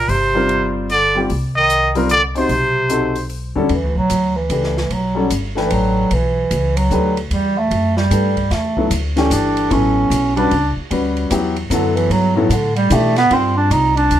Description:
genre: modal jazz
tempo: 150 BPM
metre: 3/4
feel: swing 64% on 8ths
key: E dorian from 3.7 s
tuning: A4 = 440 Hz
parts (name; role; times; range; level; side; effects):
- trumpet with straight mute; melody; 0.0-3.3 s; Bb4 to Eb5; -16 LUFS; right 1 dB; plate reverb
- clear bass clarinet; second line; 0.0-14.2 s; A2 to Eb4; -18 LUFS; right 2 dB; none
- upright bass; bass; 0.0-14.2 s; G1 to B2; -20 LUFS; equal; none
- open jazz drum kit; drums; 0.1-14.2 s; hi-hat, kick drum, ride cymbal, snare drum; -28 LUFS; right 1 dB; none
- warm grand piano; accompaniment; 0.3-14.2 s; D3 to G5; -20 LUFS; left 3 dB; none
room: moderate studio reverb, RT60 0.5 s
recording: none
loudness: -14 LUFS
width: side -11 dB against mid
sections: 0.0-3.7 A section; 3.7-13.3 B section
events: bass clarinet solo 3.7-14.2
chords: 0.0 C9sus4; 1.3 N.C.; 2.5 B7b9; 3.7 Em9; 13.3 Cm11

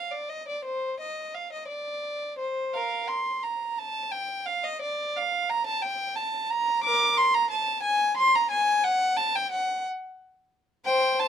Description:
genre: classical, baroque-style suite movement for unaccompanied violin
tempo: 59 BPM (dotted quarters)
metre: 6/8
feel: rubato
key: Bb major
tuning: A4 = 441 Hz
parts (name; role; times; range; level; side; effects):
- warm violin; solo; 0.0-11.3 s; Bb4 to D6; -24 LUFS; equal; none
room: light reverb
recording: dark, warm production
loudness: -24 LUFS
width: side -8 dB against mid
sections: 0.0-11.3 A section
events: none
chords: none

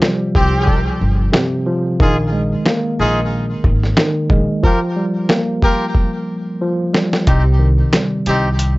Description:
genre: hip hop, boom-bap hip-hop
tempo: 91 BPM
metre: 4/4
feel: swing 57% on 16ths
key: unclear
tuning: A4 = 438 Hz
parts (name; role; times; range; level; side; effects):
- tine electric piano; accompaniment; 0.0-8.8 s; C3 to Bb3; -18 LUFS; equal; medium stereo tremolo, cassette tape, high-pass filter, low-pass filter, plate reverb
- dusty soul sampler-style drum kit; drums; 0.0-8.8 s; hi-hat, kick drum, snare drum; -15 LUFS; equal; vintage 12-bit sampler grit
- clear trumpet section; stabs; 0.4-8.5 s; C4 to Bb4; -20 LUFS; equal; high-pass filter, low-pass filter, digital delay, plate reverb
- upright bass; bass; 0.4-8.8 s; G1 to C2; -17 LUFS; equal; none
room: light reverb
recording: worn, warbling old tape, cassette tape, warbly pitch drift, nothing above 7.8 kHz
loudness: -14 LUFS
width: side -21 dB against mid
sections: 0.0-8.8 A section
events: break 0.0-7.3; drum fill 6.0-7.3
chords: 0.0 Fsus2/C; 2.0 Bb7sus4; 4.6 Gm7; 7.3 Cm

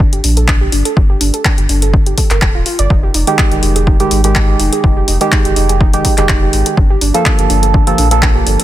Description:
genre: deep house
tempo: 124 BPM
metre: 4/4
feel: swing 54% on 16ths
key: unclear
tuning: A4 = 435 Hz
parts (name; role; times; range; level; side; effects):
- warbly dusty pluck; arpeggios; 0.0-8.6 s; D4 to D5; -20 LUFS; right 2 dB; chorus, sidechain pumping, dub echo
- warm sub bass; bass; 0.0-8.6 s; D1 to Bb1; -14 LUFS; equal; sidechain pumping
- electronic kick drum; drums; 0.0-8.3 s; none; -12 LUFS; equal; overdrive
- punchy analog drum machine; drums; 0.1-8.6 s; handclaps, hi-hat; -17 LUFS; left 1 dB; overdrive
- percussive organ stab; stabs; 3.3-8.6 s; Eb3 to A4; -15 LUFS; right 3 dB; chorus, digital delay
room: little or no reverb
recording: dense, heavily limited modern master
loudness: -9 LUFS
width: side -13 dB against mid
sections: 0.0-8.6 A section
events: none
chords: 0.0 Gmadd9; 2.9 Fm9; 6.8 Gm9

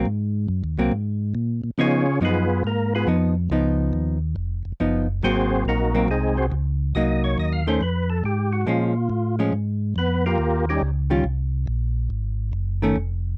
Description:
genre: jazz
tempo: 139 BPM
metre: 4/4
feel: swing 67% on 8ths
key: Ab mixolydian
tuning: A4 = 441 Hz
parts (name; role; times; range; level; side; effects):
- hollow-body jazz guitar; accompaniment; 0.0-13.0 s; Eb3 to F4; -25 LUFS; equal; none
- mellow tonewheel organ; bass; 0.0-13.4 s; F1 to Db3; -25 LUFS; equal; slow rotary speaker
- percussive tonewheel organ; melody; 1.8-10.8 s; G3 to F5; -27 LUFS; equal; overdrive, chorus vibrato, stopped rotary speaker, slapback echo
room: little or no reverb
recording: dry, close 1970s-style studio recording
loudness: -23 LUFS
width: mono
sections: 0.0-13.4 A section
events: tonewheel organ solo 0.0-13.4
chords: 0.1 Ab9; 1.8 Db9; 5.2 Ab9; 6.9 Cm7b5; 7.8 Fdim; 8.7 Bbm7; 10.4 Eb9; 12.1 Ab5

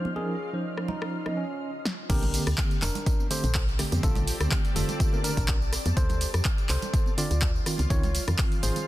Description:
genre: deep house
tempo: 124 BPM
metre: 4/4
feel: swing 54% on 16ths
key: Bb major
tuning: A4 = 441 Hz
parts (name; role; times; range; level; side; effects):
- warm analog pad; sustained chords; 0.0-1.6 s; Db4 to Eb5; -44 LUFS; right 1 dB; chorus, sidechain pumping
- tine electric piano; stabs; 0.0-8.9 s; D3 to Eb5; -32 LUFS; right 1 dB; medium tremolo, ping-pong delay
- granular cloud pad; texture; 0.0-8.9 s; C4 to C6; -40 LUFS; left 1 dB; built-in reverb, sidechain pumping
- soft string machine; texture; 0.0-1.6 s; F6; -42 LUFS; left 3 dB; phaser, ensemble chorus
- congas; percussion; 0.1-8.9 s; none; -38 LUFS; right 5 dB; sidechain pumping on perc
- bright tine electric piano; melody; 0.2-8.9 s; Db4 to D5; -36 LUFS; equal; dub echo
- punchy analog drum machine; drums; 0.8-8.9 s; crash cymbal, handclaps, hi-hat, rim click, snare drum, tambourine; -32 LUFS; equal; overdrive, small room reverb
- woody FM bass; bass; 2.1-8.7 s; F1 to F2; -27 LUFS; equal; sidechain pumping
- electronic kick drum; drums; 2.1-8.5 s; none; -26 LUFS; equal; overdrive, small room reverb
room: little or no reverb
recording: dense, heavily limited modern master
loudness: -24 LUFS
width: side -16 dB against mid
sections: 0.0-2.1 A section; 2.1-8.9 B section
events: filter sweep 0.0-2.1; break 1.6-2.1; drum fill 1.9; drop 2.1-8.9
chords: 0.0 Dbmaj9; 2.1 Bbmaj13; 6.0 Dm7; 7.7 Dbmaj9

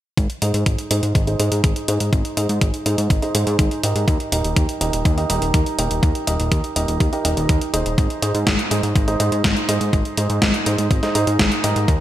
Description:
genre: italo disco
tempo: 123 BPM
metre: 4/4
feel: straight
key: Ab major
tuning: A4 = 440 Hz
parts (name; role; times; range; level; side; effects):
- fat analog bass; bass; 0.2-12.0 s; Eb1 to Ab2; -22 LUFS; equal; digital delay
- clean 12-bit digital drum machine; drums; 0.2-12.0 s; hi-hat, snare drum; -23 LUFS; equal; overdrive, gated reverb
- electronic kick drum; drums; 0.2-12.0 s; none; -19 LUFS; equal; overdrive
- bright concert grand piano; stabs; 0.4-12.0 s; Eb4 to Eb5; -23 LUFS; right 2 dB; low-pass filter, digital delay
room: moderate lush hall reverb, RT60 1.7 s, digital ambience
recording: bright 1980s-style digital production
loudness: -17 LUFS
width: side -13 dB against mid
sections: 0.2-12.0 A section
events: none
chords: 0.2 Ab; 4.1 Eb; 8.0 Ab

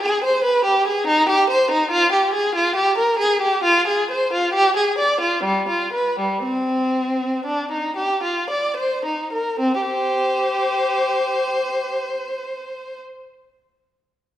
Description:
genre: classical, baroque-style suite movement for unaccompanied violin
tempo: 53-72 BPM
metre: 3/4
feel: rubato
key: C minor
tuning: A4 = 439 Hz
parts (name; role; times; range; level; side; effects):
- warm violin; solo; 0.0-13.0 s; G3 to D5; -18 LUFS; equal; none
room: wet recital hall reverb, RT60 1.4 s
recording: recorded in a church or concert hall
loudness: -17 LUFS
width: side -12 dB against mid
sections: 0.0-9.6 A section; 9.6-12.9 B section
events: slowing down 2.3-9.6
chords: 0.0 G; 1.1 Cm/Eb (rootless); 3.6 Fm; 4.5 Ddim; 5.4 G7; 6.4 Cm; 9.6 C5

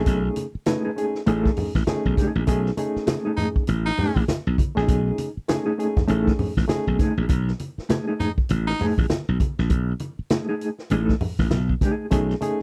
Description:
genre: funk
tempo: 100 BPM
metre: 4/4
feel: swing 60% on 16ths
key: B mixolydian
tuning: A4 = 440 Hz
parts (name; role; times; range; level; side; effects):
- bright reed electric piano; stabs; 0.0-7.1, 12.1-12.6 s; A3 to B4; -28 LUFS; equal; overdrive, fast tremolo
- slap bass; bass; 0.0-12.3 s; A1 to B1; -25 LUFS; equal; none
- vintage drum kit; drums; 0.1-12.6 s; hi-hat, kick drum, snare drum; -26 LUFS; equal; none
- congas; percussion; 0.1-12.6 s; none; -31 LUFS; equal; none
- mellow electric guitar; accompaniment; 0.7-12.1 s; A3 to A4; -27 LUFS; equal; tremolo
- breathy baritone saxophone; second line; 3.4-4.2, 8.2-8.9 s; D#4; -29 LUFS; equal; none
room: little or no reverb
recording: dry, close 1970s-style studio recording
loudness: -23 LUFS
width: mono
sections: 0.0-12.6 A section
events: none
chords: 0.0 B13

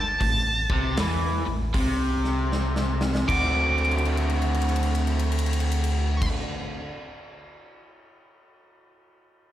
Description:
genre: blues rock power trio and southern rock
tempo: 78 BPM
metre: 4/4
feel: swing 64% on 8ths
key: D mixolydian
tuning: A4 = 440 Hz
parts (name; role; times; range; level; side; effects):
- octave-fuzz lead guitar; melody; 0.0-6.3 s; A5 to D6; -26 LUFS; right 1 dB; distortion, slapback echo
- overdriven electric guitar; riff; 0.0-6.8 s; G2 to F#4; -27 LUFS; equal; slapback echo
- pure sine sub bass; bass; 0.0-6.3 s; G1 to E2; -26 LUFS; equal; none
- big rock drum kit; drums; 0.2-7.8 s; crash cymbal, hi-hat, kick drum, ride cymbal, snare drum; -30 LUFS; equal; none
room: small room reverb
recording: live gig heard through the venue's PA, recital hall reverb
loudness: -22 LUFS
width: side -12 dB against mid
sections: 0.0-3.3 A section; 3.3-6.3 B section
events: drum fill 2.5-3.3, 3.7-6.2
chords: 0.2 A5; 3.3 D7

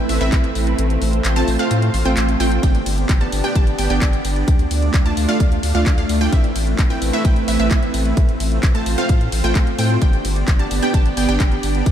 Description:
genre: EDM, festival progressive house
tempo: 130 BPM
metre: 4/4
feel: straight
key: unclear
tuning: A4 = 440 Hz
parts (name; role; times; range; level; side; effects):
- lush unison pad; sustained chords; 0.0-11.9 s; A3 to D5; -24 LUFS; right 1 dB; chorus, phaser, sidechain pumping
- wide unison pluck; arpeggios; 0.0-11.8 s; E5 to A5; -28 LUFS; right 1 dB; sidechain pumping, tape echo
- supersaw stab; riff; 0.0-11.8 s; A3 to A5; -22 LUFS; right 1 dB; sidechain pumping, tape echo
- saturated sub bass; bass; 0.0-11.9 s; G1 to A2; -21 LUFS; equal; sidechain pumping
- house drum kit; drums; 0.1-11.9 s; handclaps, hi-hat, ride cymbal; -28 LUFS; left 1 dB; none
- electronic kick drum; drums; 0.3-11.9 s; none; -16 LUFS; equal; none
room: moderate cathedral reverb, RT60 5.7 s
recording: dreamy mix soaked in reverb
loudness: -15 LUFS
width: side -10 dB against mid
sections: 0.0-11.9 A section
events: kick drops out 0.8-2.6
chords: 0.0 Amadd9; 0.8 F/A; 2.6 G; 4.5 Dm; 6.3 Amadd9; 8.2 F/A; 10.0 G

